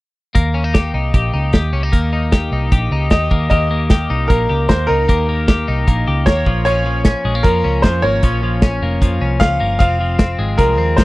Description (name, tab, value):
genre	jangly indie pop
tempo	152 BPM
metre	4/4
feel	straight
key	Eb mixolydian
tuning	A4 = 439 Hz
part	twelve-string electric guitar	arpeggios	0.3-11.0 s	F3 to G4	-21 LUFS	left 3 dB	none
part	vintage muted picked electric bass	bass	0.4-11.0 s	F1 to F2	-18 LUFS	equal	none
part	modern studio drum kit	drums	0.4-11.0 s	hi-hat, kick drum, snare drum	-13 LUFS	equal	none
part	bright upright piano	melody	3.1-11.0 s	Bb4 to F5	-19 LUFS	equal	none
room	little or no reverb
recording	dry, close 1970s-style studio recording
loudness	-13 LUFS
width	side -19 dB against mid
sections	0.4-3.5 A section; 3.5-11.0 B section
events	none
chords	0.4 Eb; 3.3 Eb5; 3.5 Eb; 6.5 Bbm; 9.8 Fm